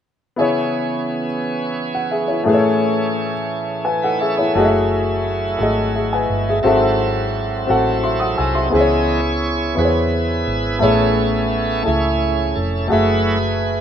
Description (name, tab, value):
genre	gospel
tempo	58 BPM (dotted quarters)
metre	6/8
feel	straight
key	C# minor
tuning	A4 = 444 Hz
part	clear upright piano	accompaniment	0.4-13.8 s	G#2 to E6	-18 LUFS	left 2 dB	none
part	bright tonewheel organ	sustained chords	0.4-13.8 s	E3 to G#5	-22 LUFS	right 4 dB	slow rotary speaker, overdrive
part	hollow-body short-scale fingered electric bass	bass	4.6-13.8 s	E#1 to E2	-23 LUFS	right 1 dB	none
room	light reverb, small room ambience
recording	rough home demo mix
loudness	-16 LUFS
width	side -9 dB against mid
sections	0.4-8.7 A section; 8.7-13.8 B section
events	tonewheel organ fill 3.5-4.6; tonewheel organ solo 8.7-13.8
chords	0.4 C#m7; 2.5 Amaj7; 4.6 F#m9; 6.6 G#7b9b13; 8.7 C#m7; 10.8 Amaj7; 12.9 F#m9